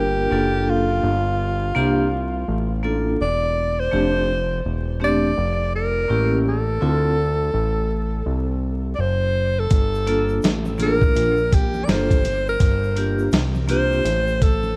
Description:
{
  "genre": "hip hop, jazz-hop",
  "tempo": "83 BPM",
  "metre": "4/4",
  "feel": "swing 63% on 16ths",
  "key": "unclear",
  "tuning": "A4 = 440 Hz",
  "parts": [
    { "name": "breathy alto saxophone", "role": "melody", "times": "0.0-14.8 s", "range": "F4 to D5", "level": "-26 LUFS", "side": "equal", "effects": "tape echo" },
    { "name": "vibraphone with medium hard mallets", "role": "accompaniment", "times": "0.0-14.0 s", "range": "A3 to Bb4", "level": "-26 LUFS", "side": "equal", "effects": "none" },
    { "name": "fat analog bass", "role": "bass", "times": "0.0-14.7 s", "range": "E1 to D2", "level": "-25 LUFS", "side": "equal", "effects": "none" },
    { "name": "dusty soul sampler-style drum kit", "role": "drums", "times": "9.7-14.6 s", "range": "hi-hat, kick drum, snare drum", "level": "-21 LUFS", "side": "equal", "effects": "vintage 12-bit sampler grit" },
    { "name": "tube shaker and congas", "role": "percussion", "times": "9.7-14.8 s", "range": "none", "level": "-36 LUFS", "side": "equal", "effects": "none" }
  ],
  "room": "studio ambience",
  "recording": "vinyl crackle",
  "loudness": "-21 LUFS",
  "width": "mono",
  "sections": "0.0-14.8 A section",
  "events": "none",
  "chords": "0.0 Gm9; 1.0 C9sus4/G; 3.9 F69; 6.1 A7b9; 6.8 D7(no3); 9.7 Gm9; 12.6 C9sus4/G"
}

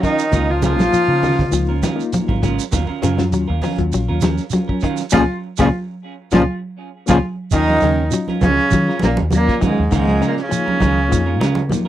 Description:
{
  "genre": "afrobeat",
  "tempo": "100 BPM",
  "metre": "4/4",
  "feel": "swing 54% on 16ths",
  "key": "Eb minor",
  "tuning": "A4 = 442 Hz",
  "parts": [
    { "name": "rich cello", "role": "melody", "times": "0.0-11.6 s", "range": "Ab3 to F4", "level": "-19 LUFS", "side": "equal", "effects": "none" },
    { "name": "growling tenor saxophone", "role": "second line", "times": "0.0-11.6 s", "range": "Ab2 to F3", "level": "-25 LUFS", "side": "right 2 dB", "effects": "none" },
    { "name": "reed electric piano", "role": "accompaniment", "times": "0.0-11.9 s", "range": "Gb3 to Ab4", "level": "-25 LUFS", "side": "left 5 dB", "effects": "fast tremolo" },
    { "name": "clean electric guitar", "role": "arpeggios", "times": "0.0-11.9 s", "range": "Bb2 to Gb3", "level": "-22 LUFS", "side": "left 5 dB", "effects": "none" },
    { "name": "semi-hollow electric guitar", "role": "stabs", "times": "0.0-11.9 s", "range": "Gb3 to Bb4", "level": "-25 LUFS", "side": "right 8 dB", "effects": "tape echo" },
    { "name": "warm soul drum kit", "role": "drums", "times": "0.0-11.9 s", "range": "hi-hat, kick drum, snare drum", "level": "-21 LUFS", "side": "equal", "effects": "none" },
    { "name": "shekere", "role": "percussion", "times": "0.0-11.9 s", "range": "none", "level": "-26 LUFS", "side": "right 6 dB", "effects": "none" },
    { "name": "vintage muted fingered electric bass", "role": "bass", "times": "0.3-11.7 s", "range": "Ab1 to Eb3", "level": "-20 LUFS", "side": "equal", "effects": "none" },
    { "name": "congas", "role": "percussion", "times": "0.3-11.9 s", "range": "none", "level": "-24 LUFS", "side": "right 3 dB", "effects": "none" }
  ],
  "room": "light reverb",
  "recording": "dry, close 1970s-style studio recording",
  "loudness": "-15 LUFS",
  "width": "side -12 dB against mid",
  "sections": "0.0-7.5 A section; 7.5-11.9 B section",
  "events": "band accent 5.1-7.5; drum fill 6.9-7.5",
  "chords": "0.3 Db6; 2.7 Ebm9; 5.1 Db6; 7.5 Ebm9; 9.9 Db6"
}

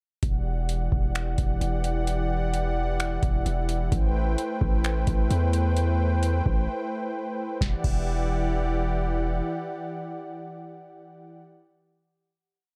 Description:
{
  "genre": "hip hop, atmospheric cloud-rap",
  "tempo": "130 BPM",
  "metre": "4/4",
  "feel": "half-time",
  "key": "E minor",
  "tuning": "A4 = 441 Hz",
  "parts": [
    { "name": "warm analog pad", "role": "sustained chords", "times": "0.2-11.4 s", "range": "E3 to G5", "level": "-32 LUFS", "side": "equal", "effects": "chorus, sidechain pumping" },
    { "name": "long sustained 808-style bass", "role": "bass", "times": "0.2-9.4 s", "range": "E1 to E2", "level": "-28 LUFS", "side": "equal", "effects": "none" },
    { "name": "booming analog drum machine", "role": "drums", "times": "0.2-8.0 s", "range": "crash cymbal, finger snaps, hi-hat, kick drum, snare drum", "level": "-29 LUFS", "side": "equal", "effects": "none" }
  ],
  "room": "digital ambience",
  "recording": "none",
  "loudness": "-26 LUFS",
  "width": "mono",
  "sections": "0.2-7.6 verse; 7.6-11.3 final chord",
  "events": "break 6.7-7.6",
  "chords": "0.2 Em7; 3.9 Am7; 7.6 Em7"
}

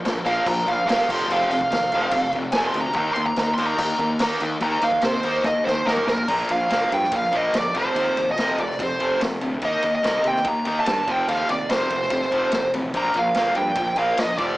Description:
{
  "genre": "classic rock",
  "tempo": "144 BPM",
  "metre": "4/4",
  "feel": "straight",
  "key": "unclear",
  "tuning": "A4 = 440 Hz",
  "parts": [
    { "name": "tight distorted guitar", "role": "riff", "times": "0.0-14.6 s", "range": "F2 to Eb4", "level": "-26 LUFS", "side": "equal", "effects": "distortion" },
    { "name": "fuzz picked electric bass", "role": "bass", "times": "0.0-14.5 s", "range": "F1 to C3", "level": "-29 LUFS", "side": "equal", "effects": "overdrive" },
    { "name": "vintage drum kit", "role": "drums", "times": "0.1-14.5 s", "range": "crash cymbal, kick drum, ride cymbal, snare drum, toms", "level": "-28 LUFS", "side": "equal", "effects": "none" },
    { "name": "biting lead guitar", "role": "melody", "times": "0.3-14.6 s", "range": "Bb4 to C6", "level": "-22 LUFS", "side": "right 1 dB", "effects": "wah, overdrive" }
  ],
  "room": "moderate plate reverb, RT60 1.9 s, small room reverb",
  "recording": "small speaker sound",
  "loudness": "-19 LUFS",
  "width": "side -18 dB against mid",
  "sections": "0.0-6.3 A section; 6.3-14.6 B section",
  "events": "lead electric guitar solo 0.0-6.3; drum fill 5.5-6.3",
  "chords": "0.0 Bb5; 1.1 F5; 3.0 Eb5; 6.3 Bb5; 7.7 F5; 9.6 Eb5; 11.1 F5; 13.0 Bb5"
}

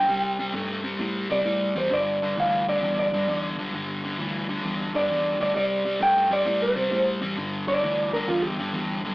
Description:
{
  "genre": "electric blues shuffle",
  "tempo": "132 BPM",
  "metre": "4/4",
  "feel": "swing 67% on 8ths",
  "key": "unclear",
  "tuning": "A4 = 440 Hz",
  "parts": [
    { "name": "electric guitar through a small old amp", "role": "second line", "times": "0.0-9.1 s", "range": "F4 to G5", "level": "-23 LUFS", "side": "equal", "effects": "none" },
    { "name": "overdriven electric guitar", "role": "riff", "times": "0.0-9.1 s", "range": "G2 to A3", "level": "-28 LUFS", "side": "left 1 dB", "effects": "none" },
    { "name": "vintage muted fingered electric bass", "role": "bass", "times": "0.0-9.1 s", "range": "G1 to C3", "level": "-34 LUFS", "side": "equal", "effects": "none" }
  ],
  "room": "wet studio reverb, RT60 0.6 s",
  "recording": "rough rehearsal-room recording, tube saturation, AM radio sound",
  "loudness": "-22 LUFS",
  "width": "side -21 dB against mid",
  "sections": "0.0-9.1 A section",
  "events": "clean electric guitar solo 0.0-9.1",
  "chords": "0.1 C5; 1.9 G5; 5.6 C5; 7.4 G5"
}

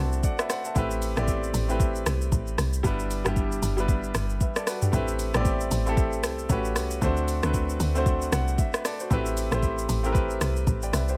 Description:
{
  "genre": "amapiano",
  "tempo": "115 BPM",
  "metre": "4/4",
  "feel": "swing 58% on 16ths",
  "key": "A dorian",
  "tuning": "A4 = 440 Hz",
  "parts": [
    { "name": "clear baby grand piano", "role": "accompaniment", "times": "0.0-11.2 s", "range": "G3 to A5", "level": "-31 LUFS", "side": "equal", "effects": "none" },
    { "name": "woody log drum bass", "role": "bass", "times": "0.0-11.2 s", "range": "G1 to D2", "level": "-30 LUFS", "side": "equal", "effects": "none" },
    { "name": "smooth R&B drum kit", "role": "drums", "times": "0.1-11.2 s", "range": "hi-hat, kick drum, rim click, shaker, toms", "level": "-30 LUFS", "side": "equal", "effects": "none" }
  ],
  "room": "little or no reverb",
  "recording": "echo-heavy mix",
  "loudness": "-26 LUFS",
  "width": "mono",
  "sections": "0.0-11.2 A section",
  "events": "grand piano fill 0.0-0.8, 8.1-9.1",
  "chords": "0.0 D7; 0.8 Am9; 2.8 G6; 4.9 Am9; 6.5 A13; 7.0 D7; 9.1 Am9"
}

